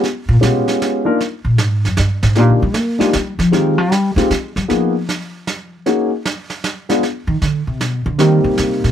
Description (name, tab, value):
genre	jazz piano trio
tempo	155 BPM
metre	3/4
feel	swing 66% on 8ths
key	F minor from 3.5 s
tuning	A4 = 440 Hz
part	warm concert grand piano	melody	0.0-8.9 s	G3 to Bb4	-16 LUFS	left 2 dB	none
part	brushed snare drum and snare drum	drums	0.0-8.9 s	none	-23 LUFS	right 4 dB	none
part	upright bass	bass	0.3-8.9 s	F#2 to A#3	-15 LUFS	equal	none
room	little or no reverb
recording	close, detailed microphones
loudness	-14 LUFS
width	side -10 dB against mid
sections	0.0-3.5 A section; 3.5-8.9 A section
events	upright bass solo 0.0-8.9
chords	0.0 Db7#11; 1.2 F#add9 (rootless); 3.5 Fm9; 4.7 N.C.; 7.0 Bm; 8.2 Cm7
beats	| 0.04 0.42 0.81 | 1.20 1.59 1.98 | 2.37 2.75 3.14 | 3.53 3.92 4.31 | 4.70 5.08 5.47 | 5.86 6.25 6.64 | 7.03 7.41 7.80 | 8.19 8.58